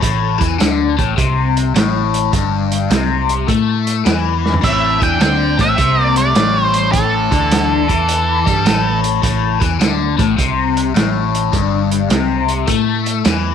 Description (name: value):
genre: blues rock power trio and southern rock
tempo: 104 BPM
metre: 4/4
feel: swing 67% on 8ths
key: A minor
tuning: A4 = 440 Hz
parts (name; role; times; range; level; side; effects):
- overdriven electric guitar; riff; 0.0-13.5 s; G2 to A3; -17 LUFS; left 11 dB; phaser
- picked electric bass; bass; 0.0-13.5 s; G1 to A2; -19 LUFS; right 3 dB; none
- vintage drum kit; drums; 0.0-13.4 s; hi-hat, kick drum, snare drum, splash cymbal, toms; -18 LUFS; right 3 dB; none
- octave-fuzz lead guitar; melody; 4.6-9.0 s; A4 to G5; -16 LUFS; right 1 dB; distortion, slapback echo
- dark smooth lead guitar; second line; 4.6-9.0 s; E3 to D4; -24 LUFS; right 15 dB; overdrive, slapback echo
room: small room ambience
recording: 1960s-style stereo with parts hard left and right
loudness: -13 LUFS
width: side -8 dB against mid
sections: 0.0-13.5 A section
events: drum fill 4.3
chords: 0.0 Am